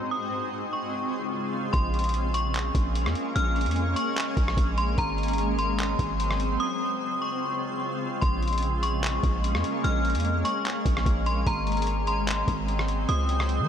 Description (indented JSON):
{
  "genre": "hip hop, atmospheric cloud-rap",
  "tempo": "148 BPM",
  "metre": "4/4",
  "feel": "half-time",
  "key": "Bb minor",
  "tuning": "A4 = 436 Hz",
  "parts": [
    { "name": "metallic FM bell", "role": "melody", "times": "0.0-13.7 s", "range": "Bb5 to F6", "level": "-30 LUFS", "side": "left 1 dB", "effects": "chorus, low-pass filter, diffuse ambient delay" },
    { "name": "shimmering ambient pad", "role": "sustained chords", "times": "0.0-13.7 s", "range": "Db3 to F4", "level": "-30 LUFS", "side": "equal", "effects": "chorus, built-in reverb, sidechain pumping, low-pass filter" },
    { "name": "warm 808-style bass", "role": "bass", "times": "1.7-13.7 s", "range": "Ab1 to F3", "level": "-27 LUFS", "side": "equal", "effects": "none" },
    { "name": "lo-fi sampler-style drum kit", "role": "drums", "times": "1.7-13.6 s", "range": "handclaps, hi-hat, kick drum, rim click", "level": "-30 LUFS", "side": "equal", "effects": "none" }
  ],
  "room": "moderate huge ambient reverb, RT60 4.8 s",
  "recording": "dreamy mix soaked in reverb",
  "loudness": "-24 LUFS",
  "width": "side -8 dB against mid",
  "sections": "0.0-1.7 A section; 1.7-13.7 B section",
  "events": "break 6.6-8.2",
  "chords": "0.1 Dbmaj7; 1.7 Bbm9; 5.0 Ab7; 6.6 Dbmaj7; 8.2 Bbm9; 11.5 Ab7; 13.1 Dbmaj7"
}